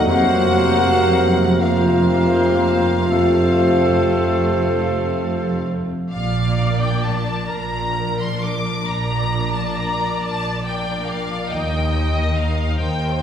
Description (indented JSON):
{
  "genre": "classical, slow romantic movement for symphony orchestra",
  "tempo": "39-47 BPM (dotted quarters)",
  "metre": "12/8",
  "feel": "rubato",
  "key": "Bb major",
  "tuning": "A4 = 443 Hz",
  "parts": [
    { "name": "rich studio violin section", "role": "melody", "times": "0.0-13.2 s", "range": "Eb5 to D6", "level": "-26 LUFS", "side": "left 3 dB", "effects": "none" },
    { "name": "dark clarinet", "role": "second line", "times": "0.0-5.6 s", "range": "F4 to Gb4", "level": "-30 LUFS", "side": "equal", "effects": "none" },
    { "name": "mellow large flute ensemble", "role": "second line", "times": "0.0-5.6 s", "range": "F5 to Gb5", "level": "-26 LUFS", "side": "left 2 dB", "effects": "none" },
    { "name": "rich studio violin section", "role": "second line", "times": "0.0-13.2 s", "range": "D4 to Gb5", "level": "-30 LUFS", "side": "left 3 dB", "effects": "none" },
    { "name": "warm oboe", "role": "second line", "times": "0.0-5.8 s", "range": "A4 to Bb4", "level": "-27 LUFS", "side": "equal", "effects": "none" },
    { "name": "mellow bassoon", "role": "accompaniment", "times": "0.0-5.7 s", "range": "C3", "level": "-23 LUFS", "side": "equal", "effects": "none" },
    { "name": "warm studio viola section", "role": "accompaniment", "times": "0.0-13.2 s", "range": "A3 to Eb5", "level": "-27 LUFS", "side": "equal", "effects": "none" },
    { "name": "warm trombone section", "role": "sustained chords", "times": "0.0-5.8 s", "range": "C3 to Bb3", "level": "-28 LUFS", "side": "right 1 dB", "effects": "none" },
    { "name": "clear trumpet section", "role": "stabs", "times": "0.0-5.7 s", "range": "C5", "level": "-30 LUFS", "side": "equal", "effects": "none" },
    { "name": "mellow tuba", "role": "bass", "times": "0.0-5.9 s", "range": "F1", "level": "-27 LUFS", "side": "right 1 dB", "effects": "none" },
    { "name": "warm studio cello section", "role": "bass", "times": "0.0-13.2 s", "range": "Eb2 to Gb3", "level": "-26 LUFS", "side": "right 1 dB", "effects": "none" },
    { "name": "warm studio double bass section", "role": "bass", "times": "0.0-13.2 s", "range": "Bb1 to F2", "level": "-23 LUFS", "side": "right 1 dB", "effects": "none" },
    { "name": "warm French horn section", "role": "sustained chords", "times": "0.1-5.6 s", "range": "F4 to Gb4", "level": "-21 LUFS", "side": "equal", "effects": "none" }
  ],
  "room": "wet scoring stage reverb, RT60 1.9 s",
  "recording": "heard from further back in the room",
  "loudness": "-16 LUFS",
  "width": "side -8 dB against mid",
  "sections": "0.0-6.1 A section; 6.1-13.2 B section",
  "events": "none",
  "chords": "0.1 Fsus4; 3.1 F; 6.1 Bb; 11.5 Eb"
}